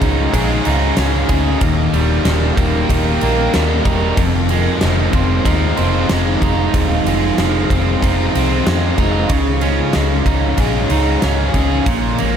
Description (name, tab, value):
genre	rock, shoegaze and dream pop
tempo	94 BPM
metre	4/4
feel	straight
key	unclear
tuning	A4 = 440 Hz
part	deep dark ambient pad	sustained chords	0.0-12.4 s	D4 to Bb5	-23 LUFS	right 2 dB	chorus, built-in reverb
part	overdriven electric guitar	riff	0.0-12.4 s	Eb2 to Ab4	-21 LUFS	right 10 dB	reverse reverb
part	thick fuzz guitar	riff	0.0-12.4 s	Eb2 to Ab4	-20 LUFS	left 8 dB	distortion, lush chorus
part	vintage muted fingered electric bass	bass	0.0-12.4 s	Eb1 to F2	-18 LUFS	equal	none
part	huge arena drum kit	drums	0.0-12.3 s	kick drum, ride cymbal, snare drum	-19 LUFS	equal	none
room	light reverb, small room ambience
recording	none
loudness	-13 LUFS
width	side -8 dB against mid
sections	0.0-12.4 A section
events	none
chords	0.0 Dbadd9; 1.6 Eb; 4.2 Fm7; 9.3 Dbadd9